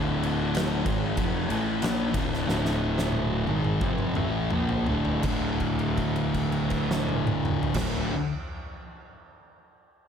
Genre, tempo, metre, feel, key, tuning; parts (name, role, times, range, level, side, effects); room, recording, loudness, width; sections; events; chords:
stoner and doom metal; 81-96 BPM; 4/4; straight; A4 = 440 Hz
thick fuzz guitar; riff; 0.0-8.1 s; D2 to Bb3; -29 LUFS; left 9 dB; distortion
thick fuzz guitar; riff; 0.0-8.1 s; D2 to Bb3; -29 LUFS; right 9 dB; distortion
fuzz picked electric bass; bass; 0.0-8.1 s; D1 to Bb1; -32 LUFS; equal; overdrive
oversized low-tuned drum kit; drums; 0.2-7.9 s; crash cymbal, kick drum, ride cymbal, snare drum, toms; -30 LUFS; equal
light reverb; -24 LUFS; side -7 dB against mid
0.0-5.3 A section; 5.3-8.2 B section
slowing down 0.0-5.3; drum fill 2.5-5.3; held note 5.3-7.8
0.0 Dm; 5.3 D5